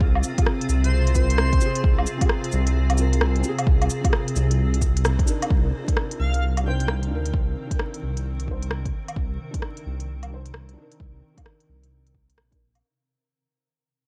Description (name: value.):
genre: future garage.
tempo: 131 BPM.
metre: 4/4.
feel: swing 64% on 16ths.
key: C minor.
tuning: A4 = 442 Hz.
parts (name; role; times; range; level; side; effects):
felt-muted upright piano; accompaniment; 0.0-12.6 s; C4 to C5; -35 LUFS; equal; sidechain pumping, low-pass filter, dub echo.
granular cloud pad; sustained chords; 0.0-12.8 s; C3 to Bb4; -34 LUFS; equal; built-in reverb, sidechain pumping.
dark detuned saw bass; bass; 0.0-12.8 s; Bb1 to D2; -25 LUFS; equal; sidechain pumping.
electronic kick drum; drums; 0.0-12.6 s; none; -24 LUFS; equal; overdrive.
organic electronic drum kit; drums; 0.2-12.8 s; cabasa, hi-hat, rim click, woodblock; -30 LUFS; equal; none.
airy dreamy lead; melody; 0.8-1.8, 6.2-6.9 s; C5 to G5; -35 LUFS; equal; chorus, dub echo.
room: digital ambience.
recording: dark, warm production, vinyl crackle.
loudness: -23 LUFS.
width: mono.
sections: 0.0-5.5 A section; 5.5-12.8 B section.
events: band accent 5.0; fade-out 5.5-12.8; filter sweep on detuned saw bass 5.5-12.8; filter sweep on felt piano 5.5-12.8.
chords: 0.0 Fm/C; 5.5 Cm7.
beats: | 0.01 0.47 0.92 1.38 | 1.84 2.30 2.75 3.21 | 3.67 4.13 4.59 5.04 | 5.50 5.96 6.42 6.88 | 7.33 7.79 8.25 8.71 | 9.17 9.62 10.08 10.54 | 11.00 11.46 11.91 12.37.